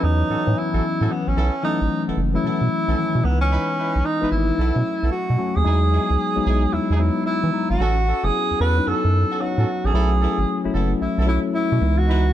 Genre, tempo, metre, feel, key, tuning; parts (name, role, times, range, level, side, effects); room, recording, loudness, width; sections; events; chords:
R&B; 112 BPM; 4/4; swing 65% on 16ths; A4 = 438 Hz
breathy tenor saxophone; melody; 0.0-12.3 s; B3 to B4; -23 LUFS; right 1 dB
tine electric piano; accompaniment; 0.0-12.3 s; D#3 to F#4; -24 LUFS; left 5 dB; phaser
warm horn section; stabs; 0.0-12.3 s; B3 to B4; -32 LUFS; right 4 dB; ping-pong delay
round analog bass; bass; 0.0-12.3 s; F#1 to E3; -20 LUFS; right 1 dB
light reverb, small room ambience; dark, warm production; -18 LUFS; side -12 dB against mid
0.0-5.7 A section; 5.7-12.3 B section
0.0 A6; 1.4 B7sus4; 3.2 C#m9; 4.6 B7sus4; 5.7 Emaj7; 7.8 A6; 9.9 B7sus4; 11.8 C#m9